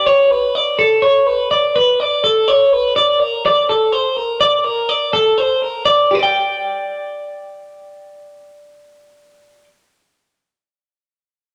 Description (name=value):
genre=rock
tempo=83 BPM (dotted quarters)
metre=6/8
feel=straight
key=G lydian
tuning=A4 = 440 Hz
part: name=twelve-string electric guitar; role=solo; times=0.0-9.6 s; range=G4 to G5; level=-15 LUFS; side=equal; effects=spring reverb
room=moderate club reverb, RT60 0.7 s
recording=none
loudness=-15 LUFS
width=mono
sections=0.3-6.1 A section; 6.1-9.0 B section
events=none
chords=0.3 Aadd9; 3.2 Amadd11; 6.1 G5